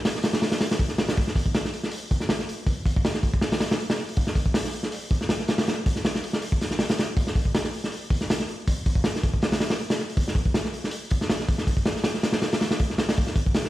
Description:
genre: drum and bass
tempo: 160 BPM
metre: 4/4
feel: swing 54% on 16ths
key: none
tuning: none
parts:
  - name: crunchy breakbeat drum kit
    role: drums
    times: 0.1-13.7 s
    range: hi-hat, kick drum, snare drum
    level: -22 LUFS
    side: equal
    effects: none
room: light reverb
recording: played on a big sound system in a bare room, stone room reverb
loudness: -22 LUFS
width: side -15 dB against mid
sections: 0.0-13.7 A section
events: none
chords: none

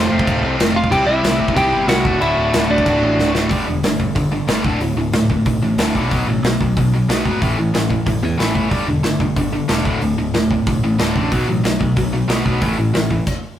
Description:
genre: punk rock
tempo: 184 BPM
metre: 4/4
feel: straight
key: D major from 3.5 s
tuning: A4 = 440 Hz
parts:
  - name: lightly driven lead guitar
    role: melody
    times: 0.0-3.3 s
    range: D4 to C6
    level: -18 LUFS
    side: equal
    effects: none
  - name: tight distorted guitar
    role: riff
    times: 0.0-13.2 s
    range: D2 to C5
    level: -19 LUFS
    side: left 1 dB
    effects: distortion
  - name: modern bright picked electric bass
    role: bass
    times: 0.0-13.2 s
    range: D1 to E2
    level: -22 LUFS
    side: equal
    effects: none
  - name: big rock drum kit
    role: drums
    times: 0.2-13.3 s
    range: crash cymbal, hi-hat, kick drum, snare drum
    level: -19 LUFS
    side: equal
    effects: none
room: light reverb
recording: rough rehearsal-room recording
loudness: -15 LUFS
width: side -11 dB against mid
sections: 0.0-3.5 A section; 3.5-13.6 B section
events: drum fill 3.2-3.5; stop 13.3-13.6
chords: 0.0 F; 0.9 C; 2.0 D; 2.9 D7; 3.5 G5; 4.6 D5; 6.1 B5; 7.4 A5; 8.7 G5; 9.8 D5; 11.3 B5; 12.6 A5

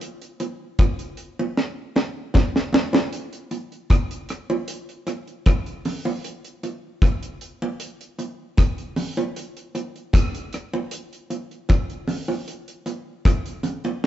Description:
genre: reggae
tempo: 77 BPM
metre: 4/4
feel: straight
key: none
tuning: none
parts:
  - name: deep reggae drum kit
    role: drums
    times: 0.0-14.1 s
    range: hi-hat, kick drum, rim click, snare drum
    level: -20 LUFS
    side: equal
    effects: none
  - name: bongos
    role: percussion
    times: 0.4-14.0 s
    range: none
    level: -29 LUFS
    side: right 2 dB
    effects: none
room: moderate stone room reverb, RT60 1.4 s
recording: band playing live in one room, nothing above 7.8 kHz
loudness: -22 LUFS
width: side -12 dB against mid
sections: 0.0-14.1 A section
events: drum fill 1.6-3.1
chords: none

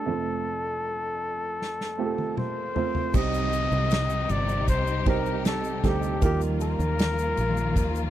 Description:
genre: pop ballad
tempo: 78 BPM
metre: 4/4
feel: straight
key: unclear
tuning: A4 = 438 Hz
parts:
  - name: warm flugelhorn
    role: melody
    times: 0.0-8.1 s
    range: G4 to Eb5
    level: -29 LUFS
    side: left 2 dB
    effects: slapback echo
  - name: warm grand piano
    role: accompaniment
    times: 0.0-8.1 s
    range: F1 to C5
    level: -30 LUFS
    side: right 7 dB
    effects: none
  - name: swell and downlifter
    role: sound effects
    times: 1.9-8.1 s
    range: none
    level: -39 LUFS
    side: left 1 dB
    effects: none
  - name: unplugged drum kit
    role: drums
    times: 1.6-7.9 s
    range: crash cymbal, kick drum, ride cymbal, snare drum, toms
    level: -27 LUFS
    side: equal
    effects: none
  - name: warm studio string section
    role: sustained chords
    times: 3.1-8.1 s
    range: C3 to G4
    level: -31 LUFS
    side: left 3 dB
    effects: none
  - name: fingered electric bass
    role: bass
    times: 3.1-8.1 s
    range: G1 to Eb2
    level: -28 LUFS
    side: equal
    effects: none
  - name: egg shaker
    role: percussion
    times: 3.1-8.1 s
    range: none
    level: -46 LUFS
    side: left 27 dB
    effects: none
room: little or no reverb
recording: dry, close 1970s-style studio recording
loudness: -24 LUFS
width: side -12 dB against mid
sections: 0.0-3.1 A section; 3.1-8.1 B section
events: swell 1.9-3.1; drum fill 1.6-3.1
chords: 0.1 F; 3.1 Cm; 6.2 Ebadd9

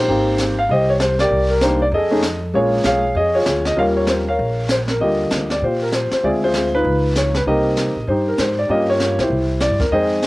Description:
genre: jazz piano trio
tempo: 195 BPM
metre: 4/4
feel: swing 61% on 8ths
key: Eb major from 5.0 s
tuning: A4 = 440 Hz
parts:
  - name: warm concert grand piano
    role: melody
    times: 0.0-10.3 s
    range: D3 to G5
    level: -17 LUFS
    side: equal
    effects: cassette tape
  - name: upright bass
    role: bass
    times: 0.0-10.3 s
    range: Ab1 to Bb2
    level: -23 LUFS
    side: equal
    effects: none
  - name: jazz brush drum kit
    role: drums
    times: 0.1-10.3 s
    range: brushed snare drum, hi-hat, kick drum, snare drum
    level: -25 LUFS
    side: equal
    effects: cassette tape
room: light reverb, studio ambience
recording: home recording on cassette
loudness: -15 LUFS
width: side -20 dB against mid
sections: 0.0-5.0 A section; 5.0-10.3 B section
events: none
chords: 0.1 Abmaj9; 1.3 Cm9; 1.9 F7#9; 2.5 Bbm7; 3.8 Eb9; 5.0 Ebmaj9; 6.2 Dm7b5; 6.8 Db9; 7.5 Cm7; 8.7 Gm7b5; 9.3 C

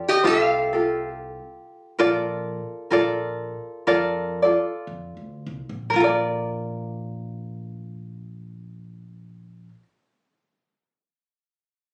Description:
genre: Hawaiian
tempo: 54-71 BPM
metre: 4/4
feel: swing 56% on 8ths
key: Bb major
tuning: A4 = 437 Hz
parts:
  - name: metal-body resonator slide guitar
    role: melody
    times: 0.0-1.1 s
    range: G4 to F5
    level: -23 LUFS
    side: equal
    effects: none
  - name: tenor ukulele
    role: accompaniment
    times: 0.0-9.8 s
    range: F4 to D5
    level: -24 LUFS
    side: equal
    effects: none
  - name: upright bass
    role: bass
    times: 0.2-9.7 s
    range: Bb1 to F2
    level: -38 LUFS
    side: equal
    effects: none
room: light reverb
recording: recorded on a phone in the room, studio reverb, compression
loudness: -23 LUFS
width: mono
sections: 0.0-5.9 A section; 5.9-10.4 B section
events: slowing down 0.0-5.9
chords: 0.0 Fadd9; 2.0 Bbmaj7

